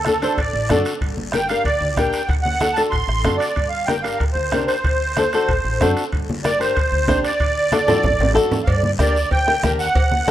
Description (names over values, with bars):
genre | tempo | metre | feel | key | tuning
latin, cumbia | 188 BPM | 4/4 | straight | G harmonic minor | A4 = 440 Hz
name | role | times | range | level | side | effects
musette accordion | melody | 0.0-10.3 s | A4 to C6 | -21 LUFS | right 2 dB | none
upright bass | bass | 0.0-10.3 s | G1 to G2 | -24 LUFS | equal | none
bombo | percussion | 0.0-10.3 s | none | -24 LUFS | equal | none
flamenco guitar | accompaniment | 0.1-10.3 s | D4 to C5 | -22 LUFS | left 2 dB | none
congas | percussion | 0.1-10.3 s | none | -27 LUFS | left 1 dB | none
guiro | percussion | 0.1-10.3 s | none | -34 LUFS | left 3 dB | none
timbales and cowbell | percussion | 0.1-10.3 s | none | -30 LUFS | right 5 dB | none
room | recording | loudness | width
light reverb, small room ambience | rough home demo mix | -16 LUFS | side -12 dB against mid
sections
0.0-8.7 A section; 8.7-10.3 B section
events
drum fill 7.7-8.7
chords
0.0 D7; 1.0 Gm; 2.3 D7; 3.6 Gm; 4.8 D7; 6.1 Gm; 7.4 D; 8.7 Gm